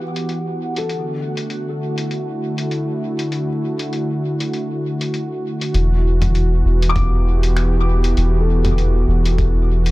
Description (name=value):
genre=ambient dub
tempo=99 BPM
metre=4/4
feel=swing 57% on 16ths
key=E minor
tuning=A4 = 440 Hz
part: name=warm analog pad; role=sustained chords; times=0.0-9.9 s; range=D3 to G4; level=-22 LUFS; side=right 1 dB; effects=chorus
part: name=felt-muted upright piano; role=arpeggios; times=0.0-9.9 s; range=A4 to D6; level=-29 LUFS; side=left 5 dB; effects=tape echo
part: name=bubbling stepped-filter texture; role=texture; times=0.0-5.8 s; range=F#5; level=-36 LUFS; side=right 3 dB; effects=chorus, built-in reverb
part: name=lo-fi sampler-style drum kit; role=drums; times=0.2-9.9 s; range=finger snaps, hi-hat, toms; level=-28 LUFS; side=equal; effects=overdrive, low-pass filter on hats, low-pass filter on toms, low-pass filter on snare, dub echo
part: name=soft dub sub bass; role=bass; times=5.7-9.9 s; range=E1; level=-15 LUFS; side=equal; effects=none
part: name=electronic kick drum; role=drums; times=7.0-9.5 s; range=none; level=-22 LUFS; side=equal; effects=none
room=little or no reverb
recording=dark, warm production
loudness=-17 LUFS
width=side -19 dB against mid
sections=0.0-5.7 A section; 5.7-9.9 B section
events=none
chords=0.0 Em9; 0.9 Dadd9; 5.7 Em9